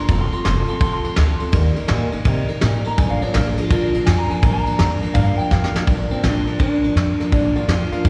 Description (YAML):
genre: rockabilly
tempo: 166 BPM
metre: 4/4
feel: swing 65% on 8ths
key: Bb major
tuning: A4 = 440 Hz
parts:
  - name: electric guitar through a small old amp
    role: melody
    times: 0.0-8.1 s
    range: C4 to C6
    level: -26 LUFS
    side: equal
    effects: slapback echo, tape echo
  - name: picked steel-string acoustic guitar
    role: accompaniment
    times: 0.0-8.1 s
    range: Bb2 to Bb4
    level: -26 LUFS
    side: equal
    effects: slapback echo
  - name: upright bass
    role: bass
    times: 0.1-8.1 s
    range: F1 to C3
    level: -22 LUFS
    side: equal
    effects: none
  - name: soft brush drum kit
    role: drums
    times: 0.1-8.1 s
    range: kick drum, ride cymbal, snare drum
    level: -24 LUFS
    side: equal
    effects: none
room: small room ambience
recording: live gig heard through the venue's PA, recital hall reverb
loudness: -18 LUFS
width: mono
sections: 0.0-5.9 A section; 5.9-8.1 B section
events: clean electric guitar solo 0.0-5.9; drum fill 5.5-5.9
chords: 0.1 F; 1.5 Eb; 3.0 Bb